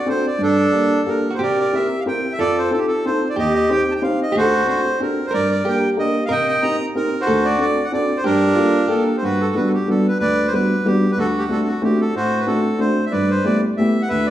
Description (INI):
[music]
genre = musette waltz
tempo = 184 BPM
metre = 3/4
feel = swing 54% on 8ths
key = G minor, G major from 9.2 s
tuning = A4 = 440 Hz
[part]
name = accordion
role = melody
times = 0.0-14.3 s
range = D4 to Bb5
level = -19 LUFS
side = right 1 dB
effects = none
[part]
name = dark upright piano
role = accompaniment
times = 0.1-14.3 s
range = D2 to C5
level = -19 LUFS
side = equal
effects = none
[part]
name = hollow-body jazz guitar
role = second line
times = 1.3-9.2 s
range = F4 to Bb4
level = -24 LUFS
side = right 1 dB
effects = none
[sound]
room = wet recital hall reverb, RT60 1.4 s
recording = small room ambience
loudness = -16 LUFS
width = side -12 dB against mid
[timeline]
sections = 0.0-9.2 A section; 9.2-14.3 B section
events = none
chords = 0.4 Gmadd9; 1.4 C7; 2.4 F7; 3.4 Cm/Eb; 4.3 D7; 5.3 Gm; 6.3 Cm7; 7.3 D7; 8.2 Gmadd9; 9.2 Gmaj7; 11.2 D7; 13.1 G69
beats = 0.07 | 0.40 0.73 1.06 | 1.40 1.73 2.06 | 2.39 2.71 3.04 | 3.36 3.69 4.01 | 4.34 4.66 4.98 | 5.32 5.64 5.97 | 6.30 6.62 6.95 | 7.27 7.59 7.92 | 8.24 8.56 8.89 | 9.22 9.55 9.88 | 10.21 10.53 10.86 | 11.18 11.50 11.82 | 12.13 12.46 12.78 | 13.11 13.44 13.76 | 14.09